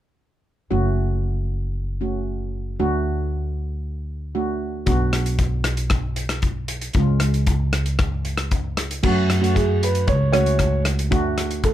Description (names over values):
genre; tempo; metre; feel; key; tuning
calypso; 115 BPM; 4/4; straight; F# harmonic minor; A4 = 440 Hz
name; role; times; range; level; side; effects
steel pan; accompaniment; 0.7-11.5 s; G#3 to F#4; -25 LUFS; right 2 dB; none
upright bass; bass; 0.7-11.7 s; F#1 to F#2; -22 LUFS; equal; none
modern studio drum kit; drums; 4.9-11.7 s; crash cymbal, hi-hat, kick drum, rim click; -23 LUFS; left 2 dB; none
felt-muted upright piano; melody; 9.6-11.7 s; G#4 to C#5; -22 LUFS; right 2 dB; none
room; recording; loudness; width
little or no reverb; close, detailed microphones; -19 LUFS; side -12 dB against mid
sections
0.7-9.0 A section; 9.0-11.7 B section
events
none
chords
0.7 F#m; 2.8 D; 4.9 Bm; 7.0 C#; 9.0 F#m; 11.1 D